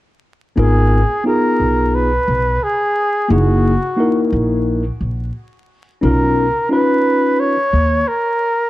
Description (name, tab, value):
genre	hip hop, jazz-hop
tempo	88 BPM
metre	4/4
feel	swing 60% on 16ths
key	G# dorian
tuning	A4 = 440 Hz
part	breathy flugelhorn	melody	0.6-8.7 s	F#4 to C#5	-17 LUFS	equal	plate reverb
part	mellow tine electric piano	accompaniment	0.6-7.6 s	A#3 to B4	-16 LUFS	left 1 dB	slow stereo tremolo
part	upright bass	bass	0.6-8.0 s	F#1 to D#2	-16 LUFS	equal	none
room	moderate studio reverb, RT60 0.6 s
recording	vinyl crackle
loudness	-13 LUFS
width	side -16 dB against mid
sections	0.6-8.7 A section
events	none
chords	0.6 G#m69; 3.3 F#13; 6.0 Bmaj9#11